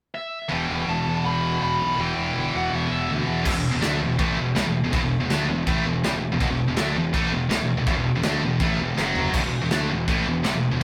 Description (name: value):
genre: heavy metal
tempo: 163 BPM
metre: 4/4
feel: straight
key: E minor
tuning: A4 = 441 Hz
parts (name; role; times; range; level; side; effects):
- high-gain lead guitar; melody; 0.1-3.1 s; E5 to B5; -30 LUFS; equal; distortion, digital delay
- scooped high-gain guitar; riff; 0.5-10.8 s; E2 to D4; -26 LUFS; equal; distortion
- fuzz fingered electric bass; bass; 0.5-10.8 s; E1 to E2; -30 LUFS; equal; overdrive
- modern studio drum kit; drums; 3.5-10.5 s; china cymbal, crash cymbal, kick drum, snare drum, toms; -29 LUFS; equal; none
room: moderate studio reverb, RT60 0.6 s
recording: rough rehearsal-room recording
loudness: -23 LUFS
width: mono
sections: 0.5-3.5 A section; 3.5-10.8 B section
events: drum fill 9.0-9.3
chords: 0.0 N.C.; 0.5 Em; 3.5 E5; 9.0 F#5; 9.3 E5